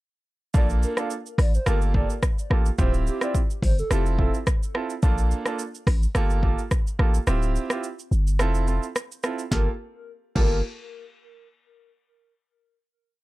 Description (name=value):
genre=afrobeats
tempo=107 BPM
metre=4/4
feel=swing 55% on 16ths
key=G dorian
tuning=A4 = 440 Hz
part: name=clear concert grand piano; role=accompaniment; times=0.5-10.6 s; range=Bb3 to A4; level=-30 LUFS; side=right 4 dB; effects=plate reverb
part: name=warm 808-style bass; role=bass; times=0.5-10.6 s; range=D1 to Bb1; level=-22 LUFS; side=equal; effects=none
part: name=afro-pop drum kit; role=drums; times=0.5-10.5 s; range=crash cymbal, hi-hat, kick drum, rim click, shaker, snare drum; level=-24 LUFS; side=equal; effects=none
part: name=hollow clarinet-like synth lead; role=melody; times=0.6-4.3, 9.5-10.6 s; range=G4 to F5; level=-32 LUFS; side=left 1 dB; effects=chorus, plate reverb, ping-pong delay
room=little or no reverb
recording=dark, warm production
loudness=-21 LUFS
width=side -19 dB against mid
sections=0.5-9.5 chorus; 9.5-11.8 final chord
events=kick muted 7.3-9.5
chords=0.5 Bbmaj7; 1.7 Gm9; 2.8 Dm11; 3.9 Fmaj7; 5.0 Bbmaj7; 6.2 Gm9; 7.3 Dm11; 8.4 Fmaj7; 9.5 Gm9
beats=| 0.54 1.10 1.67 2.23 | 2.79 3.35 3.91 4.47 | 5.03 5.59 6.15 6.71 | 7.27 7.83 8.39 8.96 | 9.52 10.08